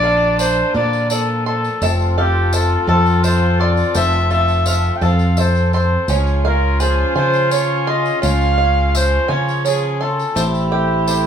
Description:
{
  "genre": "indie folk with a building arrangement",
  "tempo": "56 BPM (dotted quarters)",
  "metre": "6/8",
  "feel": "straight",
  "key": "F major",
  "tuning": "A4 = 440 Hz",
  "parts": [
    { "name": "mellow trumpet", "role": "melody", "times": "0.0-11.3 s", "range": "G4 to G5", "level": "-19 LUFS", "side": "left 1 dB", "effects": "none" },
    { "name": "warm trombone", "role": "second line", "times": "0.0-11.3 s", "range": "D4 to F4", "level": "-23 LUFS", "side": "right 2 dB", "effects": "none" },
    { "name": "picked swing-style acoustic guitar", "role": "accompaniment", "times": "0.0-11.3 s", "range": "Bb2 to Bb4", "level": "-26 LUFS", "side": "left 3 dB", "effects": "none" },
    { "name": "warm studio string section", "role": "sustained chords", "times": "0.0-11.3 s", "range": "Db3 to A4", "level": "-28 LUFS", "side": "equal", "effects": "none" },
    { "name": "bluegrass banjo", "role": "arpeggios", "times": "0.0-11.3 s", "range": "Db4 to C6", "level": "-25 LUFS", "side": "right 6 dB", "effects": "none" },
    { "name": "fingered electric bass", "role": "bass", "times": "0.0-11.3 s", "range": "F1 to Db3", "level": "-17 LUFS", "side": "equal", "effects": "none" },
    { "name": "tambourine", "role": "percussion", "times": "0.4-11.2 s", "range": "none", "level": "-28 LUFS", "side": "left 3 dB", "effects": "none" }
  ],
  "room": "moderate studio reverb, RT60 0.6 s",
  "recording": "band playing live in one room, small room ambience",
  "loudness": "-14 LUFS",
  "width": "side -8 dB against mid",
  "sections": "0.0-11.3 A section",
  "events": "none",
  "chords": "0.0 Bb; 1.8 Fmaj7; 6.1 Db; 10.4 Am7"
}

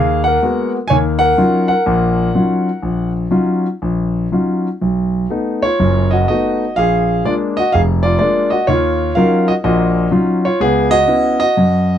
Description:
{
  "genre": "solo jazz",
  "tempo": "125 BPM",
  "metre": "4/4",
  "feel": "swing 66% on 8ths, rubato",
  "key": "Eb minor",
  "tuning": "A4 = 440 Hz",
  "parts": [
    { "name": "warm concert grand piano", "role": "solo", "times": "0.0-12.0 s", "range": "F1 to Ab5", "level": "-13 LUFS", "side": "equal", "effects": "none" }
  ],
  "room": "light reverb",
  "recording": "none",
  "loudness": "-13 LUFS",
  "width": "side -10 dB against mid",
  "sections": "0.0-12.0 A section",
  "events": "none",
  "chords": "0.0 Abm9; 0.9 Ebm9; 4.8 B7; 6.8 Bb7; 8.7 Ebm9; 10.6 Dbm7"
}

